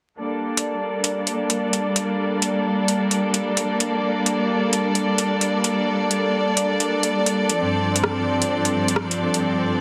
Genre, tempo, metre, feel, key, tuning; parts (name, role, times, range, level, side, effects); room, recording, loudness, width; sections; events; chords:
future garage; 130 BPM; 4/4; swing 66% on 16ths; G minor; A4 = 440 Hz
clear symphonic string section; sustained chords; 0.2-9.8 s; G2 to D5; -22 LUFS; equal; low-pass filter
deep house drum kit; drums; 0.6-9.4 s; hi-hat, rim click; -24 LUFS; equal
moderate digital room reverb, RT60 1.1 s, small room reverb; dense, heavily limited modern master, vinyl crackle; -22 LUFS; mono
0.2-9.8 A section
0.2 Gmadd9; 7.6 F6/G